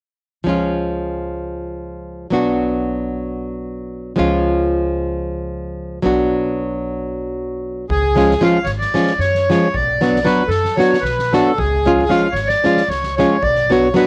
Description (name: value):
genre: balkan folk, Balkan wedding band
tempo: 227 BPM (eighths)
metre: 7/8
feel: straight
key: unclear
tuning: A4 = 441 Hz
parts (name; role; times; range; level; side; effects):
- nylon-string guitar; accompaniment; 0.4-14.1 s; E#3 to F#4; -19 LUFS; equal; none
- upright bass; bass; 0.5-13.9 s; G#1 to F#2; -28 LUFS; equal; none
- accordion; melody; 7.9-14.1 s; G#4 to E#5; -20 LUFS; equal; cassette tape
- soft-mallet drum kit; percussion; 7.9-14.0 s; kick drum, snare drum; -32 LUFS; equal; none
room: studio reverb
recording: home recording on cassette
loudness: -18 LUFS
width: mono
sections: 0.5-7.9 A section; 7.9-14.1 B section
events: none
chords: 0.5 C#; 2.3 Bm; 4.2 C#; 6.0 Bm; 7.9 C#; 9.7 Bm; 11.6 C#; 13.4 Bm